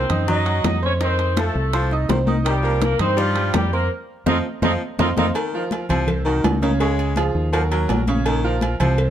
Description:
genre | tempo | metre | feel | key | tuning
latin, salsa | 166 BPM | 4/4 | straight | Bb minor | A4 = 440 Hz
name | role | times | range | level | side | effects
warm horn section | melody | 0.0-5.3 s | F3 to Eb5 | -24 LUFS | equal | plate reverb
bright baritone saxophone | second line | 0.0-9.0 s | Eb3 to Ab3 | -27 LUFS | left 3 dB | none
bright concert grand piano | accompaniment | 0.0-9.1 s | C3 to Eb6 | -25 LUFS | right 4 dB | none
fingered electric bass | bass | 0.0-9.1 s | Bb1 to G2 | -21 LUFS | equal | none
congas | percussion | 0.1-9.1 s | none | -27 LUFS | left 3 dB | none
timbales and agogo bells | percussion | 0.1-9.0 s | none | -28 LUFS | right 6 dB | none
bongos and cowbell | percussion | 0.3-9.1 s | none | -28 LUFS | left 4 dB | none
room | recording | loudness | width
light reverb | dark, warm production | -18 LUFS | side -10 dB against mid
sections
0.0-5.4 A section; 5.4-9.1 B section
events
drum fill 3.9-5.4; band accent 3.9-5.4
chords
0.0 Cdim; 1.0 F7; 2.5 Cm7; 3.9 F5; 5.4 Bb5; 6.1 Cdim; 6.8 Db; 7.5 Ebm; 8.3 Bbm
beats
0.28 0.65 | 1.01 1.37 1.73 2.09 | 2.45 2.82 3.18 3.54 | 3.90 4.27 4.63 4.99 | 5.35 5.72 6.08 6.44 | 6.80 7.17 7.53 7.89 | 8.25 8.62 8.98

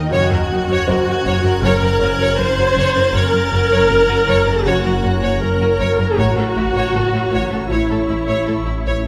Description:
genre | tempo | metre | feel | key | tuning
cinematic, suspense film score | 79 BPM | 4/4 | straight | unclear | A4 = 440 Hz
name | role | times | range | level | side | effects
rich symphonic violin section | melody | 0.0-9.0 s | E4 to Db5 | -26 LUFS | equal | none
warm symphonic viola section | accompaniment | 0.0-9.1 s | Eb4 to C5 | -20 LUFS | equal | none
shimmering ambient pad | sustained chords | 0.0-9.1 s | Db4 to C#6 | -30 LUFS | equal | chorus, built-in reverb
concert harp | riff | 0.0-9.1 s | Gb2 to Eb4 | -27 LUFS | equal | none
rich symphonic double bass section | bass | 0.0-8.9 s | Gb1 to A1 | -27 LUFS | equal | none
warm symphonic cello section | bass | 0.0-8.9 s | Gb2 to A2 | -26 LUFS | equal | none
swarming drone | drone | 0.0-9.1 s | Gb1 to A1 | -28 LUFS | equal | built-in reverb
felt-muted upright piano | texture | 0.0-9.1 s | C5 to Bb5 | -33 LUFS | equal | none
clear symphonic violin section | texture | 0.1-5.8 s | Gb6 to A6 | -30 LUFS | equal | none
room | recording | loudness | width
moderate concert hall reverb, RT60 1.8 s | close, detailed microphones | -16 LUFS | mono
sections
0.0-9.1 A section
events
none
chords
0.1 Gb; 6.2 A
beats
| 0.12 0.87 1.63 2.39 | 3.15 3.90 4.66 5.42 | 6.18 6.95 7.71 8.48

